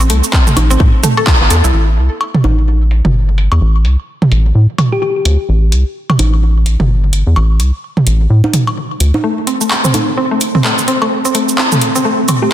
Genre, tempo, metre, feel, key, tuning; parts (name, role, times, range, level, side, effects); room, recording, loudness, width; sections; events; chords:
minimal techno; 128 BPM; 4/4; swing 59% on 16ths; A minor; A4 = 440 Hz
mallet-like synth pluck; riff; 0.0-1.7, 9.2-12.5 s; A3 to A4; -15 LUFS; equal; chorus, cassette tape, sidechain pumping, digital delay
rubbery square bass; bass; 0.0-9.1 s; G1 to A2; -10 LUFS; equal; sidechain pumping
booming analog drum machine; drums; 0.0-12.4 s; cabasa, handclaps, hi-hat; -17 LUFS; equal; low-pass filter on perc, low-pass filter on hats, low-pass filter on snare, low-pass filter on room
electronic cowbell, toms and congas; percussion; 0.0-12.4 s; -16 LUFS; right 1 dB; overdrive, ping-pong delay
electronic kick drum; drums; 0.3-1.4 s; -11 LUFS; equal
thumb-piano-like synth pluck; melody; 4.9-5.1, 12.4-12.5 s; G4; -17 LUFS; left 2 dB; chorus, ping-pong delay
moderate lush hall reverb, RT60 1.6 s, digital ambience; dense, heavily limited modern master, high-pass filter; -10 LUFS; side -12 dB against mid
0.0-1.7 A section; 1.7-9.2 B section; 9.2-12.5 C section
band accent 1.3; filter sweep on drum 1.7-9.2; build-up 9.2-12.5
0.0 Am; 1.7 N.C.; 9.2 Am